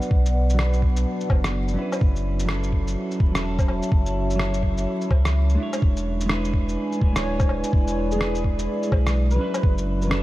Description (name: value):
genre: future garage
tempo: 126 BPM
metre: 4/4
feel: swing 61% on 16ths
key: F# minor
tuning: A4 = 443 Hz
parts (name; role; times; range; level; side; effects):
- clean electric guitar; accompaniment; 0.0-10.2 s; F#3 to C#5; -28 LUFS; right 1 dB; sidechain pumping, low-pass filter, diffuse ambient delay
- dark analog pad; sustained chords; 0.0-10.2 s; B3 to A5; -31 LUFS; left 1 dB; chorus, sidechain pumping
- electronic shaker, rim click and woodblock; drums; 0.0-10.2 s; none; -30 LUFS; left 1 dB; none
- warm sub bass; bass; 0.1-10.2 s; D1 to C#2; -24 LUFS; equal; tube saturation, sidechain pumping
- electronic kick drum; drums; 0.1-9.8 s; none; -20 LUFS; equal; none
- airy dreamy lead; melody; 7.2-9.7 s; G#4 to C#5; -30 LUFS; equal; chorus, diffuse ambient delay
room: light reverb, digital ambience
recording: vinyl crackle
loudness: -20 LUFS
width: side -16 dB against mid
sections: 0.0-10.2 A section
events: filter sweep on clean electric guitar 0.0-10.2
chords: 0.0 Bm; 2.0 F#m7; 5.8 E7; 9.6 F#m7